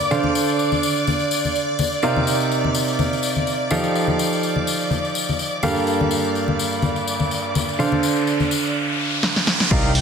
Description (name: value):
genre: piano house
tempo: 125 BPM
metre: 4/4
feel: swing 55% on 16ths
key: unclear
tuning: A4 = 436 Hz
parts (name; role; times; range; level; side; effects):
- string machine, violins; sustained chords; 0.0-10.0 s; D5 to G6; -25 LUFS; equal; ensemble chorus, vintage 12-bit sampler grit, sidechain pumping
- clear grand piano; riff; 0.0-9.9 s; G2 to F5; -21 LUFS; right 2 dB; sidechain pumping, ping-pong delay
- tambourine and congas; percussion; 0.0-8.7 s; none; -24 LUFS; left 4 dB; none
- riser; sound effects; 6.9-9.7 s; none; -26 LUFS; right 1 dB; none
- punchy analog drum machine; drums; 9.2-10.0 s; crash cymbal, hi-hat, snare drum; -19 LUFS; equal; none
- plucky analog bass; bass; 9.7-10.0 s; C2; -20 LUFS; equal; sidechain pumping
- electronic kick drum; drums; 9.7-9.8 s; none; -20 LUFS; equal; none
room: moderate lush hall reverb, RT60 1.9 s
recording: none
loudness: -18 LUFS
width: side -6 dB against mid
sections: 0.0-9.7 A section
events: riser 6.9-9.7; drum fill 9.2-9.7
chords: 0.1 Dm7; 2.0 Cm11; 3.7 F9; 5.6 Gm9; 7.8 Dm7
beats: | 0.11 0.59 1.07 1.55 | 2.03 2.51 2.99 3.47 | 3.95 4.43 4.91 5.39 | 5.87 6.35 6.83 7.31 | 7.79 8.27 8.75 9.23 | 9.71